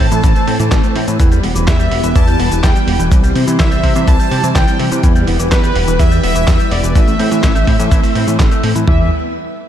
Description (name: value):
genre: italo disco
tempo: 125 BPM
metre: 4/4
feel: straight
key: E minor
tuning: A4 = 439 Hz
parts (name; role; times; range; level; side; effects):
- analog synth brass; melody; 0.0-9.1 s; B4 to A5; -21 LUFS; equal; chorus, ping-pong delay
- string machine, full ensemble; sustained chords; 0.0-9.1 s; E3 to E5; -19 LUFS; right 1 dB; ensemble chorus
- electric guitar with an envelope filter; arpeggios; 0.0-9.1 s; E3 to C4; -22 LUFS; left 1 dB; ping-pong delay
- chorused synth bass; bass; 0.0-9.1 s; E1 to C3; -16 LUFS; equal; tube saturation
- dusty soul sampler-style drum kit; drums; 0.0-9.0 s; kick drum, toms; -13 LUFS; equal; none
- dusty soul sampler-style drum kit; drums; 0.0-8.9 s; cabasa, handclaps, hi-hat, snare drum; -22 LUFS; equal; none
room: light reverb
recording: dark, warm production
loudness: -10 LUFS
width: side -10 dB against mid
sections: 0.0-8.9 A section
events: none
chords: 0.0 Am; 1.2 Em; 3.1 C; 5.0 Em; 7.0 Am; 8.9 Em